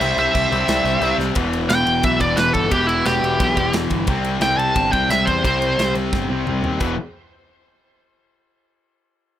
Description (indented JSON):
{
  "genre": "heavy metal",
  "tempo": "177 BPM",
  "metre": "4/4",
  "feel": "straight",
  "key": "E minor",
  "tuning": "A4 = 440 Hz",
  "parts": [
    { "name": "high-gain lead guitar", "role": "melody", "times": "0.0-5.9 s", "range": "E4 to A5", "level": "-20 LUFS", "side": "right 1 dB", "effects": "distortion, ping-pong delay" },
    { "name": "high-gain lead guitar", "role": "second line", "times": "0.0-1.2 s", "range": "C5", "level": "-27 LUFS", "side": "right 6 dB", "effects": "distortion" },
    { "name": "pipe organ, strings celeste", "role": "sustained chords", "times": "0.0-1.4 s", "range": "C3 to D4", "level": "-34 LUFS", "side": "equal", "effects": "none" },
    { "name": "distorted electric guitar", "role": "riff", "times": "0.0-6.9 s", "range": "E2 to C4", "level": "-27 LUFS", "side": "right 10 dB", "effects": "distortion" },
    { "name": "high-gain distorted guitar", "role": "riff", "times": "0.0-6.9 s", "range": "E2 to C4", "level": "-23 LUFS", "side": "left 7 dB", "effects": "distortion" },
    { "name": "fuzz picked electric bass", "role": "bass", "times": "0.0-7.0 s", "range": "E1 to E2", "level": "-25 LUFS", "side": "right 1 dB", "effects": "overdrive" },
    { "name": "modern studio drum kit", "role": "drums", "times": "0.0-6.9 s", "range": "crash cymbal, kick drum, ride cymbal, snare drum, toms", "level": "-25 LUFS", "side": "right 1 dB", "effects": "none" }
  ],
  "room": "studio ambience",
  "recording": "rough home demo mix",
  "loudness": "-16 LUFS",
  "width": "side -11 dB against mid",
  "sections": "0.0-1.4 A section; 1.4-6.8 B section; 6.8-8.2 C section",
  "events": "half time 0.0-1.4; drum fill 1.2, 6.1-6.8; lead electric guitar solo 1.4-6.8",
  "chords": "0.0 C; 1.4 Em; 4.1 C5; 6.8 E5"
}